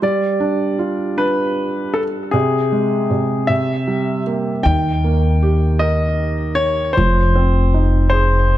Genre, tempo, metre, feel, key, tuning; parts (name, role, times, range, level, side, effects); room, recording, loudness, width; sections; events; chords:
six-eight pop ballad; 52 BPM (dotted quarters); 6/8; straight; F minor; A4 = 439 Hz
clear grand piano; melody; 0.0-8.6 s; Ab4 to G5; -20 LUFS; left 2 dB; ping-pong delay
felt-muted upright piano; accompaniment; 0.0-8.6 s; C3 to Bb4; -20 LUFS; right 3 dB
upright bass; bass; 4.7-8.6 s; F1 to Eb2; -16 LUFS; equal
light reverb, studio reverb; dark, warm production; -15 LUFS; side -13 dB against mid
0.0-8.6 A section
0.0 G7; 2.3 Ab/C; 3.5 C7; 4.7 Eb; 7.0 Fm7